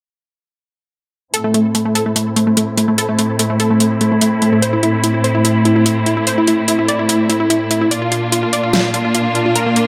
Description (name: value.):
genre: heavy wobble dubstep.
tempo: 146 BPM.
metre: 4/4.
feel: half-time.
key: A phrygian.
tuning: A4 = 440 Hz.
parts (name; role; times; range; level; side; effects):
unison pluck; melody; 1.3-9.8 s; A3 to D5; -18 LUFS; equal; dub echo.
clear symphonic string section; sustained chords; 1.3-9.9 s; A2 to F4; -19 LUFS; equal; low-pass filter.
dubstep drum kit; drums; 1.3-9.8 s; hi-hat, snare drum; -20 LUFS; equal; none.
room: light reverb.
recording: none.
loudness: -15 LUFS.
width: mono.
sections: 1.3-9.9 A section.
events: filter sweep on string section 1.3-9.9.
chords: 1.3 Am; 7.9 Bb.